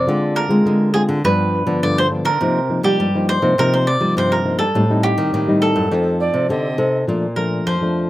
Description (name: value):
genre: samba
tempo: 103 BPM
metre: 4/4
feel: straight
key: unclear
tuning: A4 = 440 Hz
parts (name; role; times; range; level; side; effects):
- cavaquinho; melody; 0.0-8.1 s; G4 to D5; -20 LUFS; right 1 dB; none
- nylon-string guitar; accompaniment; 0.0-8.1 s; F2 to A4; -19 LUFS; left 1 dB; none
- nylon-string guitar; bass; 0.0-8.1 s; F2 to Ab3; -20 LUFS; equal; none
- mellow soprano recorder; second line; 6.2-7.0 s; D5 to Eb5; -22 LUFS; right 4 dB; slapback echo
room: little or no reverb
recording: recorded outdoors, with no room sound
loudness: -15 LUFS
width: side -15 dB against mid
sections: 0.0-7.1 A section; 7.1-8.1 B section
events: cavaquinho solo 7.1-8.1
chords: 0.1 Dm7b5; 1.2 G7; 2.4 Cm7; 4.7 Am7b5; 5.9 F7; 7.1 Bbmaj7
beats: | 0.08 0.66 1.25 1.83 | 2.41 3.00 3.58 4.16 | 4.75 5.33 5.92 6.50 | 7.08 7.67